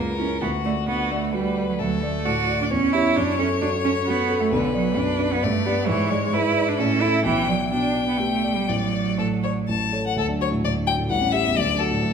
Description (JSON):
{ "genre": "quick classical-period movement for piano trio", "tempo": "131 BPM", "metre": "3/4", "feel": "rubato", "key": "D major from 4.5 s", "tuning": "A4 = 441 Hz", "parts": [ { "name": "clear violin", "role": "melody", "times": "0.0-12.1 s", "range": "F#4 to A5", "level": "-26 LUFS", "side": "left 8 dB", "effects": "none" }, { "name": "rich cello", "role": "second line", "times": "0.0-12.1 s", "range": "D3 to F#4", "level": "-24 LUFS", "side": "right 6 dB", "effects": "none" }, { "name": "dark grand piano", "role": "accompaniment", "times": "0.0-12.1 s", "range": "A1 to E5", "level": "-24 LUFS", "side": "equal", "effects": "none" } ], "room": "wet recital hall reverb, RT60 1.6 s", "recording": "minimal, uncompressed stereo recording", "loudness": "-20 LUFS", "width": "side -7 dB against mid", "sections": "0.0-10.2 A section; 10.2-12.1 B section", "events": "none", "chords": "0.4 Bm/D; 1.8 D5; 2.7 C#dim/E; 3.2 F#madd11; 4.5 Bm; 5.4 G; 5.9 E7/G#; 6.8 A; 7.3 G/B; 8.7 D/A; 9.7 A; 10.2 D; 11.1 A7; 11.6 D", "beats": "| 0.41 0.88 1.34 | 1.79 2.25 2.71 | 3.17 3.62 4.07 | 4.52 4.97 5.43 | 5.89 6.34 6.79 | 7.25 7.72 8.20 | 8.68 9.18 9.68 | 10.17 10.64 11.10 | 11.56 12.02" }